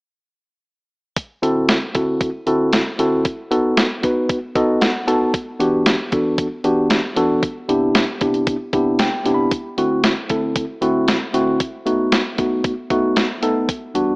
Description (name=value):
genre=early-eighties boogie funk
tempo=115 BPM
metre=4/4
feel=straight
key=unclear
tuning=A4 = 440 Hz
part: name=clean 12-bit digital drum machine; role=drums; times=1.2-14.1 s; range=hi-hat, kick drum, snare drum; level=-19 LUFS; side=equal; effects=gated reverb
part: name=mellow tine electric piano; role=accompaniment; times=1.4-14.2 s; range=E2 to B5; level=-17 LUFS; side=equal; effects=none
room=moderate plate reverb, RT60 2.2 s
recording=AM radio sound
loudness=-16 LUFS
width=side -36 dB against mid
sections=1.2-14.2 A section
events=tine electric piano fill 4.3-5.3, 8.7-9.5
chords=1.2 D9; 3.3 B7; 5.3 Em7; 7.4 Cmaj7; 9.5 D9; 11.6 B7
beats=| 1.17 1.69 2.21 2.73 | 3.25 3.77 4.30 4.82 | 5.34 5.86 6.38 6.91 | 7.43 7.95 8.47 8.99 | 9.51 10.04 10.56 11.08 | 11.60 12.12 12.64 13.16 | 13.69